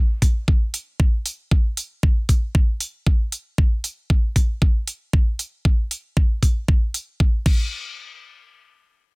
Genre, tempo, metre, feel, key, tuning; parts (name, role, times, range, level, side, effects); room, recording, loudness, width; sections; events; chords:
nu-disco, nu disco; 116 BPM; 4/4; straight
electronic kick drum; drums; 0.2-7.6 s; -17 LUFS; equal
pop drum kit; drums; 0.2-7.6 s; crash cymbal, hi-hat; -27 LUFS; equal
digital ambience; dense, heavily limited modern master; -18 LUFS; side -31 dB against mid
0.0-7.7 A section; 7.7-9.2 B section